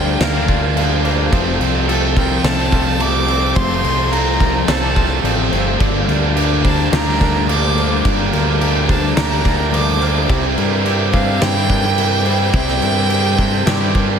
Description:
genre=post-rock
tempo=107 BPM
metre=4/4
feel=straight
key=G dorian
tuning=A4 = 440 Hz
part: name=rich violin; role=melody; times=0.0-14.2 s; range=F5 to D6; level=-23 LUFS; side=right 1 dB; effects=slapback echo, analog delay
part: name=icy glass pad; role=sustained chords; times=0.0-14.2 s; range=A3 to D6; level=-31 LUFS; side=right 2 dB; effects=none
part: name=electric guitar through a small old amp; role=arpeggios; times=0.0-14.2 s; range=A4 to D5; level=-28 LUFS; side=right 4 dB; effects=slapback echo, analog delay
part: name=twangy electric guitar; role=arpeggios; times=0.0-14.2 s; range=G2 to Bb4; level=-27 LUFS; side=left 2 dB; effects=slapback echo, analog delay
part: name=cranked stack guitar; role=riff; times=0.0-14.2 s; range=F2 to E4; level=-23 LUFS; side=right 12 dB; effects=overdrive, slapback echo
part: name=distorted electric guitar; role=riff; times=0.0-14.1 s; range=F2 to E4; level=-22 LUFS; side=left 12 dB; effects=distortion, slapback echo
part: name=growling fingered electric bass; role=bass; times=0.0-14.2 s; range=F1 to G2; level=-19 LUFS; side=equal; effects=overdrive
part: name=oversized low-tuned drum kit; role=drums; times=0.2-14.1 s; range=crash cymbal, kick drum, snare drum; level=-19 LUFS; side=right 1 dB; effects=none
room=light reverb, studio reverb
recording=none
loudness=-13 LUFS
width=side -7 dB against mid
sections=0.0-14.2 A section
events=none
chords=0.0 Gm7; 1.3 F; 5.8 Gm7; 10.3 Cadd9

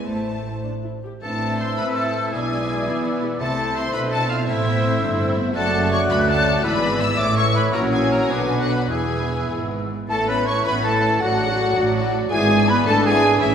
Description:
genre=quick classical-period movement for symphony orchestra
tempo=98-114 BPM (dotted quarters)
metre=6/8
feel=rubato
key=A minor, A major from 5.6 s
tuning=A4 = 440 Hz
part: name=rich studio violin section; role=melody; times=0.0-13.5 s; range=E5 to E6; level=-26 LUFS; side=left 3 dB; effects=none
part: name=warm studio violin section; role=second line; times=0.0-13.5 s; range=A3 to A5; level=-30 LUFS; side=left 3 dB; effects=none
part: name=dark studio viola section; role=accompaniment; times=0.0-13.5 s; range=D3 to C5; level=-28 LUFS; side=right 1 dB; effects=none
part: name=mellow French horn section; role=sustained chords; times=0.0-13.5 s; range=E3 to C5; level=-28 LUFS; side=left 1 dB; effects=none
part: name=warm studio cello section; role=bass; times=0.0-13.5 s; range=D2 to B3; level=-28 LUFS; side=right 1 dB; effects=none
part: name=warm studio double bass section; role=bass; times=0.0-13.5 s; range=E1 to B2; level=-26 LUFS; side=right 2 dB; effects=none
part: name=clear oboe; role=second line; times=1.2-13.5 s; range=E4 to E5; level=-28 LUFS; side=equal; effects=none
part: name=dark clarinet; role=second line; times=1.2-13.5 s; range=B4 to D5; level=-32 LUFS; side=equal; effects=none
part: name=silver concert flute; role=second line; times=1.2-13.5 s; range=E5 to F#6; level=-27 LUFS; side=left 1 dB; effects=none
part: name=mellow bassoon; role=accompaniment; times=1.2-13.5 s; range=E3 to A3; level=-29 LUFS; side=equal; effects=none
part: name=dark trumpet section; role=stabs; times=1.2-13.5 s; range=E4 to E5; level=-27 LUFS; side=right 2 dB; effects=none
room=wet scoring stage reverb, RT60 1.6 s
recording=recorded in a church or concert hall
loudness=-18 LUFS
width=side -8 dB against mid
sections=0.0-1.2 A section; 1.2-10.1 B section; 10.1-13.5 C section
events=none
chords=0.1 Am; 2.3 E7/B; 3.4 Am/C; 4.5 Am; 5.6 D/F#; 6.6 E7/G#; 7.2 A; 7.7 F#7/A#; 8.3 Bm; 8.9 E; 10.1 A; 11.2 D/A; 12.3 E7/G#

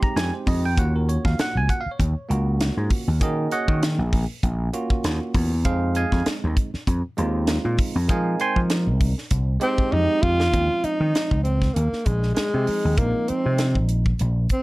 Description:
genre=electric jazz fusion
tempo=98 BPM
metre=4/4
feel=swing 55% on 16ths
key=Eb dorian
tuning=A4 = 439 Hz
part: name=bell-like tine electric piano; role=accompaniment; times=0.0-14.0 s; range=F3 to C6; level=-27 LUFS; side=right 3 dB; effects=none
part: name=vintage slap bass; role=bass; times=0.0-14.5 s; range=Bb1 to F3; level=-22 LUFS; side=equal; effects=none
part: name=crisp fusion drum kit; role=drums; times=0.0-14.6 s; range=hi-hat, kick drum, snare drum, toms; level=-24 LUFS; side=equal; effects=none
part: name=breathy tenor saxophone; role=melody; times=9.6-14.6 s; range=Ab3 to F4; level=-23 LUFS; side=equal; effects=slapback echo
room=light reverb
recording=dark, warm production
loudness=-20 LUFS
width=side -20 dB against mid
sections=0.0-10.5 A section; 10.5-14.6 B section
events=drum fill 9.9-10.5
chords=0.0 Fm9; 0.8 Ebm9; 5.7 Fm9; 10.5 Eb13sus4

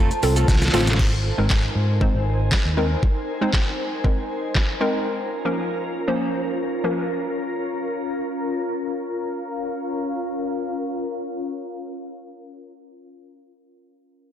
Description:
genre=dance-pop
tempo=118 BPM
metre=4/4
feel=straight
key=Bb minor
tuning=A4 = 440 Hz
part: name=synth chime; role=melody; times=0.0-0.7 s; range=A5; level=-33 LUFS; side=equal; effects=ensemble chorus, dub echo
part: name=glassy FM pad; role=sustained chords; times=0.0-12.6 s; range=Db4 to Bb5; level=-27 LUFS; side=left 1 dB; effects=ensemble chorus, built-in reverb, sidechain pumping
part: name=direct-recorded clean electric guitar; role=riff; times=0.0-0.9 s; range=A3 to A4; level=-29 LUFS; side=right 5 dB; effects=lush chorus
part: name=vintage muted fingered electric bass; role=bass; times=0.0-2.9 s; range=Ab1 to Ab2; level=-21 LUFS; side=equal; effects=sidechain pumping
part: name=smooth R&B drum kit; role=drums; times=0.1-4.7 s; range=crash cymbal, handclaps, hi-hat, kick drum, shaker, snare drum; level=-21 LUFS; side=equal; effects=none
part: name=hollow square pluck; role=accompaniment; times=0.2-7.1 s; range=F3 to C5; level=-26 LUFS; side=equal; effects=chorus, sidechain pumping
room=moderate lush hall reverb, RT60 2.0 s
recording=blown-out, overdriven recording, overdrive, low-pass filter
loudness=-20 LUFS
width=side -10 dB against mid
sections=1.0-9.1 A section; 9.1-13.2 B section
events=drum fill 0.5-1.0; filter sweep 1.0-9.1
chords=0.0 F; 1.0 Abadd9; 5.1 Bbm

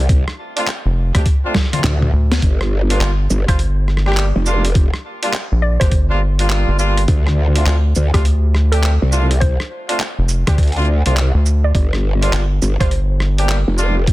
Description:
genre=glitch hop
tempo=103 BPM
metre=4/4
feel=swing 63% on 16ths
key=G minor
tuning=A4 = 440 Hz
part: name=growl bass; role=bass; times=0.0-14.1 s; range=F1 to D2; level=-15 LUFS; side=equal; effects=chorus, overdrive
part: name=boom bap sampler-style drum kit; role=drums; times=0.1-14.1 s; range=handclaps, hi-hat, rim click, shaker, snare drum, toms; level=-22 LUFS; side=equal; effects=soft clipping on snare
part: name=electronic kick drum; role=drums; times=0.1-14.1 s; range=none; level=-15 LUFS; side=equal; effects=none
part: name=warm horn section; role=stabs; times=0.6-14.0 s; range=G3 to G4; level=-23 LUFS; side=equal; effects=vintage 12-bit sampler grit, sidechain pumping, tape echo
part: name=rubbery square bass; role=bass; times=0.9-13.6 s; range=F1 to D2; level=-15 LUFS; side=equal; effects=none
part: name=woody wave-folded pluck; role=melody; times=3.5-12.9 s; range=G4 to D5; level=-26 LUFS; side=right 1 dB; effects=chorus, vintage 12-bit sampler grit, tape echo
room=little or no reverb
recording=dense, heavily limited modern master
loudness=-14 LUFS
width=side -18 dB against mid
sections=0.0-14.1 A section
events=drum fill 1.5-2.4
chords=0.0 Dm7; 2.4 Gm7; 7.1 Dm7; 11.7 Gm7

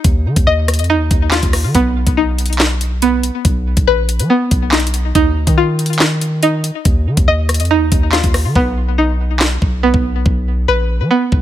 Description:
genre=hip hop, drill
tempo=141 BPM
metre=4/4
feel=half-time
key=unclear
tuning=A4 = 440 Hz
part: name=string-like resonator pluck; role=arpeggios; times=0.0-11.4 s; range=B3 to Eb5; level=-16 LUFS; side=equal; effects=chorus, low-pass filter, ping-pong delay
part: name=long sustained 808-style bass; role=bass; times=0.0-11.4 s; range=Bb1 to F#3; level=-16 LUFS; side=equal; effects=none
part: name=drill drum kit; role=drums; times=0.0-11.4 s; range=handclaps, hi-hat, kick drum, rim click, snare drum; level=-15 LUFS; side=equal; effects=none
room=little or no reverb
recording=none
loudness=-12 LUFS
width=side -12 dB against mid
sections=0.0-8.6 A section; 8.6-11.4 B section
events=hi-hats muted 8.6-11.4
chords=0.0 Ebsus2; 1.7 B; 5.2 Ebsus2; 8.6 B

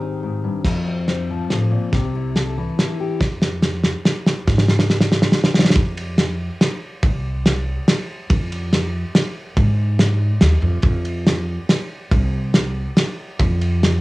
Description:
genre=indie folk with a building arrangement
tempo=141 BPM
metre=3/4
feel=straight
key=unclear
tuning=A4 = 439 Hz
part: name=fingerpicked steel-string acoustic guitar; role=accompaniment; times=0.0-3.2 s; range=F2 to C5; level=-22 LUFS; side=left 3 dB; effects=cassette tape
part: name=upright bass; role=bass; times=0.6-14.0 s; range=C2 to Ab2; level=-20 LUFS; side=equal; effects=none
part: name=cloth-damped thuddy drum kit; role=drums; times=0.6-13.9 s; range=crash cymbal, kick drum, ride cymbal, snare drum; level=-17 LUFS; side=equal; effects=cassette tape
room=light reverb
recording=home recording on cassette, small room ambience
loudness=-17 LUFS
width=side -20 dB against mid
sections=0.6-5.8 A section; 5.8-14.0 B section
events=build-up 0.6-5.8; drum fill 0.6-5.8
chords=0.0 Ab; 0.6 F; 1.9 C; 3.2 N.C.; 9.6 Ab5; 10.8 N.C.

